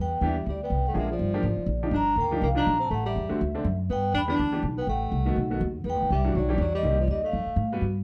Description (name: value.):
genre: jazz.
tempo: 244 BPM.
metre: 4/4.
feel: swing 57% on 8ths.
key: unclear.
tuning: A4 = 440 Hz.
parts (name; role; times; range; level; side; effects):
vibraphone with medium mallets; melody; 0.0-7.7 s; D5 to B5; -32 LUFS; equal; plate reverb.
breathy tenor saxophone; second line; 0.0-7.7 s; F3 to D4; -34 LUFS; equal; none.
upright bass; bass; 0.0-8.0 s; G1 to A2; -30 LUFS; equal; none.
clear baby grand piano; accompaniment; 0.2-7.8 s; D3 to B4; -33 LUFS; equal; none.
room: moderate studio reverb, RT60 0.7 s.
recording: dark, warm production.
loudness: -26 LUFS.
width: mono.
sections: 0.0-7.8 A section.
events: none.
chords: 0.0 Em7; 0.9 Bb7; 1.9 Ebmaj9; 2.9 Am7; 3.4 D7; 3.9 G6; 4.9 F#dim; 5.4 B7; 5.9 Em9; 6.8 Cm7; 7.3 Fadd9.